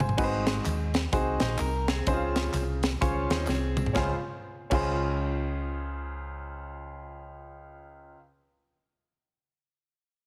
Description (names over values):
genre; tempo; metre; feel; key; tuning
uptempo gospel; 127 BPM; 4/4; swing 61% on 8ths; Db major; A4 = 440 Hz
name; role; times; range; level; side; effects
clear upright piano; accompaniment; 0.0-8.2 s; Db2 to Ab5; -34 LUFS; equal; none
hollow-body short-scale fingered electric bass; bass; 0.0-8.1 s; G1 to Eb2; -34 LUFS; equal; none
crisp fusion drum kit; drums; 0.0-4.8 s; crash cymbal, hi-hat, kick drum, snare drum, toms; -32 LUFS; equal; none
tambourine and handclaps; percussion; 0.0-4.8 s; none; -46 LUFS; equal; none
clean electric guitar; second line; 1.4-3.9 s; C4 to Db5; -38 LUFS; equal; none
room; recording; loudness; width
light reverb; heavily compressed radio sound, multiband compression; -28 LUFS; mono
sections
0.2-4.0 A section; 4.0-7.7 B section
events
drum fill 0.0, 3.5-4.0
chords
0.2 Ab7; 2.1 Dbmaj7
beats
| 0.18 0.65 1.12 1.59 | 2.06 2.54 3.01 3.48 | 3.95 4.42 4.90 5.37 | 5.84 6.32 6.79 7.26